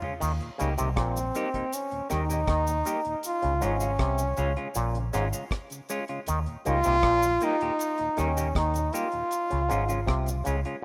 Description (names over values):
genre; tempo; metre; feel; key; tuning
roots reggae; 79 BPM; 4/4; straight; Eb mixolydian; A4 = 438 Hz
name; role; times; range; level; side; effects
mellow tonewheel organ; accompaniment; 0.0-10.8 s; Eb2 to F4; -43 LUFS; equal; none
semi-hollow electric guitar; accompaniment; 0.0-10.8 s; Ab3 to G4; -38 LUFS; equal; tape echo
deep reggae drum kit; drums; 0.0-10.8 s; crash cymbal, hi-hat, kick drum, rim click, toms; -37 LUFS; equal; none
auto-wah clav; riff; 0.2-10.8 s; Ab2 to Eb3; -36 LUFS; equal; none
vintage muted fingered electric bass; bass; 0.2-10.6 s; Ab1 to Eb2; -31 LUFS; equal; none
cabasa; percussion; 0.2-10.6 s; none; -44 LUFS; equal; none
brilliant trombone; melody; 1.0-10.5 s; C4 to F4; -30 LUFS; equal; tape echo
room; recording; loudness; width
moderate lush hall reverb, RT60 2.0 s, small room reverb; rough home demo mix; -27 LUFS; mono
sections
0.2-10.8 A section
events
drum fill 0.0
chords
0.2 Eb; 3.2 Db; 6.3 Eb; 9.3 Db